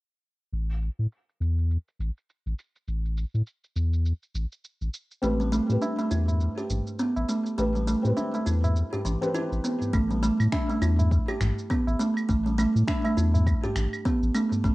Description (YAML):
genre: organic downtempo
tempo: 102 BPM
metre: 4/4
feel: swing 58% on 16ths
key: A minor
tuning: A4 = 440 Hz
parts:
  - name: warm sub bass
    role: bass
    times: 0.5-14.7 s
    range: A1 to A2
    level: -25 LUFS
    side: equal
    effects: none
  - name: electronic shaker, claves and finger snaps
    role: drums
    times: 0.5-14.7 s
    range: none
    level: -38 LUFS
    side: right 1 dB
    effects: low-pass filter on perc, cassette tape, low-pass filter on snare
  - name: felt-muted upright piano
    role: accompaniment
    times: 5.2-10.0 s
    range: C4 to B4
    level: -33 LUFS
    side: left 1 dB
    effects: sidechain pumping, cassette tape, tape echo
  - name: kalimba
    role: arpeggios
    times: 5.2-14.7 s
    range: E3 to G4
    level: -26 LUFS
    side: right 1 dB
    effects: cassette tape, tape echo
  - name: tabla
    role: percussion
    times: 5.8-14.6 s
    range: none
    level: -32 LUFS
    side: equal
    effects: none
  - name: electronic kick drum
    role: drums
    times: 9.9-14.7 s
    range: none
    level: -28 LUFS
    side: equal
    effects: cassette tape
room: moderate studio reverb, RT60 0.6 s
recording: home recording on cassette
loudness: -24 LUFS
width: side -19 dB against mid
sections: 0.5-9.9 A section; 9.9-14.7 B section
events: none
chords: 0.5 Am7; 9.9 N.C.